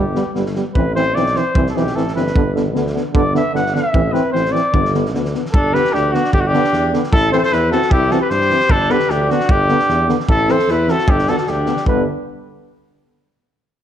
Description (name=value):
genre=balkan folk, Balkan brass band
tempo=151 BPM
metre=2/4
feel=straight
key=G major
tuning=A4 = 438 Hz
part: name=mellow trumpet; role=melody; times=0.0-12.1 s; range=F#4 to F#5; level=-18 LUFS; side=equal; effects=none
part: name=clear euphonium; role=accompaniment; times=0.0-12.0 s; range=B3 to C4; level=-23 LUFS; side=left 5 dB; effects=none
part: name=clear trombone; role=accompaniment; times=0.0-12.0 s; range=D3 to G3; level=-23 LUFS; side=right 6 dB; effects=none
part: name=warm tuba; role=bass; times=0.0-12.1 s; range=G1 to G2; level=-22 LUFS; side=equal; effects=none
part: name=loose indie drum kit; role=percussion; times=0.2-12.0 s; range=kick drum, snare drum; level=-21 LUFS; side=equal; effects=none
part: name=clear alto saxophone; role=second line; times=5.5-12.0 s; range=G3 to A4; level=-21 LUFS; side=left 2 dB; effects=none
room=moderate recital hall reverb, RT60 1.4 s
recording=dark, warm production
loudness=-14 LUFS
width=side -10 dB against mid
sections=0.0-5.5 A section; 5.5-11.9 B section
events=trumpet solo 0.0-5.5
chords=0.0 G; 0.8 Am; 1.6 C; 2.4 G; 3.9 Am; 4.7 G; 7.1 Am; 7.9 C; 8.7 G; 10.3 Am; 11.1 G